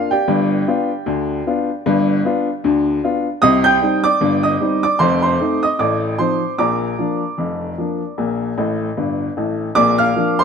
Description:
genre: ragtime piano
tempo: 76 BPM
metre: 2/4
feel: swing 57% on 16ths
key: Bb major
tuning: A4 = 440 Hz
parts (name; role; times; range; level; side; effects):
- clear upright piano; solo; 0.0-10.4 s; F1 to G6; -15 LUFS; equal; none
room: moderate echo chamber reverb, RT60 1.6 s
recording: none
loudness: -15 LUFS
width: side -6 dB against mid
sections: 0.0-9.8 A section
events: upright piano fill 8.6-9.8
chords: 0.3 G7; 3.4 Cm; 5.0 F7; 5.8 F7/A; 6.6 Bb

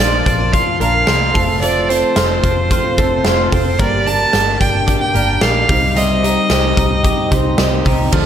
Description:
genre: jangly indie pop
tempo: 111 BPM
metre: 4/4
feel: straight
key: unclear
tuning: A4 = 440 Hz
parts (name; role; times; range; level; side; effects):
- rich violin; melody; 0.0-7.9 s; C5 to A5; -17 LUFS; right 2 dB; slapback echo
- picked twelve-string acoustic guitar; accompaniment; 0.0-8.3 s; G2 to Bb4; -21 LUFS; right 4 dB; slapback echo
- twelve-string electric guitar; arpeggios; 0.0-8.3 s; F3 to G4; -21 LUFS; left 4 dB; wide subtle chorus, slapback echo
- vintage muted picked electric bass; bass; 0.0-8.3 s; F1 to D2; -19 LUFS; equal; none
- big rock drum kit; drums; 0.3-8.3 s; crash cymbal, hi-hat, kick drum, snare drum; -17 LUFS; equal; none
room: moderate scoring stage reverb, RT60 1.9 s, studio reverb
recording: big arena sound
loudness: -12 LUFS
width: side -9 dB against mid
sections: 0.0-8.1 A section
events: none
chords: 0.0 Bb; 1.4 F; 3.8 Gm; 5.7 Cm

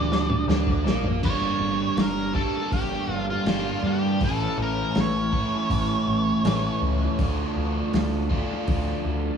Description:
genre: psychedelic rock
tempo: 80 BPM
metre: 4/4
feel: straight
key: unclear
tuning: A4 = 440 Hz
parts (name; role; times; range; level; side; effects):
- octave-fuzz lead guitar; melody; 0.0-6.8 s; F4 to D5; -30 LUFS; right 2 dB; distortion, dub echo
- string machine, cellos; sustained chords; 0.0-9.4 s; G3 to A5; -35 LUFS; right 3 dB; ensemble chorus
- overdriven semi-hollow guitar; riff; 0.0-9.4 s; G2 to G4; -26 LUFS; equal; phaser
- growling picked electric bass; bass; 0.0-9.3 s; G1 to G2; -27 LUFS; right 1 dB; overdrive
- tanpura; drone; 0.0-7.0 s; Bb2 to A3; -42 LUFS; left 1 dB; none
- vintage drum kit; drums; 0.1-8.9 s; crash cymbal, hi-hat, kick drum, snare drum, toms; -27 LUFS; equal; dub echo
room: small room ambience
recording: echo-heavy mix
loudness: -22 LUFS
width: side -7 dB against mid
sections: 0.0-1.2 A section; 1.2-9.4 B section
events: drum fill 0.0-1.2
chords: 0.0 Bb6; 1.2 Gm; 4.2 A; 7.2 Dm

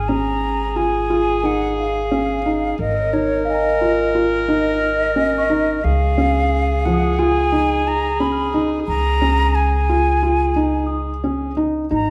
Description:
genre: contemporary instrumental, chamber music in an uneven meter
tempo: 177 BPM (eighths)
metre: 9/8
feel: straight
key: unclear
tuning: A4 = 437 Hz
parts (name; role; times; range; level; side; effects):
- breathy mellow silver concert flute; melody; 0.0-12.1 s; C#5 to B5; -24 LUFS; equal; none
- dark viola; second line; 0.0-11.6 s; G#4 to A#4; -26 LUFS; equal; none
- upright bass; bass; 0.0-12.1 s; G#1 to C#2; -25 LUFS; equal; none
- celesta; texture; 0.0-12.1 s; A#4 to E#6; -35 LUFS; equal; none
- felt-muted upright piano; arpeggios; 0.1-12.1 s; E#3 to E#4; -23 LUFS; equal; none
room: moderate recital hall reverb, RT60 1.7 s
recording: dark, warm production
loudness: -18 LUFS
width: mono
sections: 0.0-11.9 A section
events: none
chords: 0.0 C#add9/G#; 5.8 C#

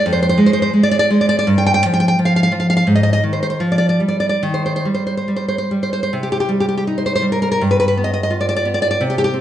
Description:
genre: romantic piece for solo classical guitar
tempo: 69-91 BPM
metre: 2/4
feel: rubato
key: C minor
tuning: A4 = 440 Hz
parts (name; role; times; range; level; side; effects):
- nylon-string guitar; solo; 0.0-9.4 s; F2 to G5; -14 LUFS; equal; none
room: wet recital hall reverb, RT60 1.6 s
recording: nothing above 10.4 kHz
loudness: -14 LUFS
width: side -11 dB against mid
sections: 0.0-6.1 A section; 6.1-9.4 B section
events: none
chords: 0.1 Fm6; 1.5 Fsus2/G; 2.9 Ab5; 3.6 Dmadd11/F; 4.4 Eb6; 6.1 Cm; 7.6 G7

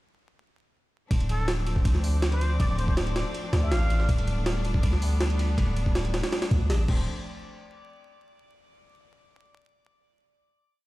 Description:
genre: drum and bass, jungle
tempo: 161 BPM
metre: 4/4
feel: straight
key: D dorian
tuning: A4 = 439 Hz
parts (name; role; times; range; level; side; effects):
- rich studio string section; sustained chords; 1.1-7.1 s; F3 to D4; -35 LUFS; left 1 dB; none
- long sustained 808-style bass; bass; 1.1-7.1 s; D1 to D2; -25 LUFS; equal; none
- jungle sampler-style drum kit; drums; 1.1-7.0 s; crash cymbal, hi-hat, kick drum, ride cymbal, snare drum; -27 LUFS; equal; overdrive
- drifting glass-harmonics texture; texture; 1.6-7.1 s; D5 to D6; -42 LUFS; left 1 dB; chorus, built-in reverb
- trumpet with plunger mute; melody; 1.3-4.1 s; A4 to F5; -36 LUFS; equal; dub echo
room: digital ambience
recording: played on a big sound system in a bare room, large studio reverb, vinyl crackle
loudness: -23 LUFS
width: side -18 dB against mid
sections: 1.1-7.1 drop; 7.1-8.6 final hit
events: drop 1.1-7.1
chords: 1.1 Dm7; 4.1 Gadd9/D; 6.9 Dm7; 7.1 N.C.

